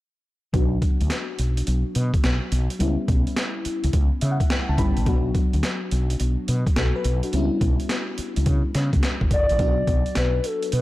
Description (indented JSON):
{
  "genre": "R&B, new jack swing",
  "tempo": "106 BPM",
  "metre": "4/4",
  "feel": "swing 66% on 16ths",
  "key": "B minor",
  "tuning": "A4 = 441 Hz",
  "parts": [
    { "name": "FM electric piano with soft pad layer", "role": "accompaniment", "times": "0.5-10.8 s", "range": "F#3 to B5", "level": "-28 LUFS", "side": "left 2 dB", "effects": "chorus, tremolo, low-pass filter" },
    { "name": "woody fretless electric bass", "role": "bass", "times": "0.5-10.8 s", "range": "F#1 to C#3", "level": "-22 LUFS", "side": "equal", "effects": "none" },
    { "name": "breakbeat sampler-style drum kit", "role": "drums", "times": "0.5-10.8 s", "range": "hi-hat, kick drum, snare drum", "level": "-23 LUFS", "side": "equal", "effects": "none" },
    { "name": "hollow clarinet-like synth lead", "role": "melody", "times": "9.3-10.8 s", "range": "A4 to D5", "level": "-23 LUFS", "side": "left 1 dB", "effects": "chorus" }
  ],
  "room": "digital ambience",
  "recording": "dark, warm production",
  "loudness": "-20 LUFS",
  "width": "side -17 dB against mid",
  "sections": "0.5-9.6 A section; 9.6-10.8 B section",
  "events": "filter sweep on FM electric piano 0.5-9.6; FM electric piano fill 3.9-5.1",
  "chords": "0.5 Bm; 2.8 C#m7b5; 5.1 Bm; 7.3 C#m7b5; 9.6 Bm",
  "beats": "| 0.54 1.10 1.67 2.23 | 2.80 3.37 3.93 4.50 | 5.06 5.63 6.20 6.76 | 7.33 7.89 8.46 9.03 | 9.59 10.16 10.72"
}